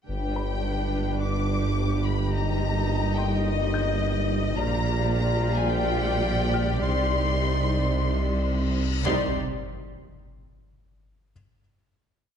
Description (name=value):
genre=cinematic, hybrid orchestral and electronic film score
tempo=107 BPM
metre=4/4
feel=straight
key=C minor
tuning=A4 = 440 Hz
part: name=rich studio violin section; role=melody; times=0.1-9.4 s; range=Eb5 to D6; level=-32 LUFS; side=left 6 dB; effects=none
part: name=rich symphonic violin section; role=second line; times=0.1-9.4 s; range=G4 to Eb5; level=-35 LUFS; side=left 4 dB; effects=none
part: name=warm symphonic viola section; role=accompaniment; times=0.1-9.4 s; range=G3 to F4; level=-33 LUFS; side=right 1 dB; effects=none
part: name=mellow French horn section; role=sustained chords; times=0.1-9.3 s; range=Eb3 to D5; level=-33 LUFS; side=left 1 dB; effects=none
part: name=clear tuba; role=bass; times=0.1-9.3 s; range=G1 to C2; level=-32 LUFS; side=right 4 dB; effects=none
part: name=pure sine sub bass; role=bass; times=0.1-9.4 s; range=G1 to C2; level=-30 LUFS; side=left 1 dB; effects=none
part: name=warm studio cello section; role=bass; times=0.1-9.4 s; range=G2 to C3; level=-30 LUFS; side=right 3 dB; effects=none
part: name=warm symphonic double bass section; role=bass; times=0.1-9.4 s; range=G1 to C2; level=-32 LUFS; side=right 4 dB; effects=none
part: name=felt-muted upright piano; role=texture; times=0.4-9.1 s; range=B4 to G6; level=-42 LUFS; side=left 3 dB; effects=digital delay
part: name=reverse cymbal and impact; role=sound effects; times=8.2-11.3 s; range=none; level=-39 LUFS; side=left 3 dB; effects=none
room=moderate scoring stage reverb, RT60 1.7 s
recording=dark, warm production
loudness=-23 LUFS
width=side -8 dB against mid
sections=0.1-9.1 theme; 9.1-11.3 final chord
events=reverse cymbal 8.2-9.1; impact 9.1-11.3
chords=0.1 G; 2.3 Eb/G; 4.6 Bb6; 6.8 Cmadd9; 9.1 Cm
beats=| 0.09 0.65 1.21 1.77 | 2.33 2.89 3.45 4.01 | 4.58 5.13 5.70 6.26 | 6.82 7.38 7.94 8.50 | 9.06 9.62 10.18 10.74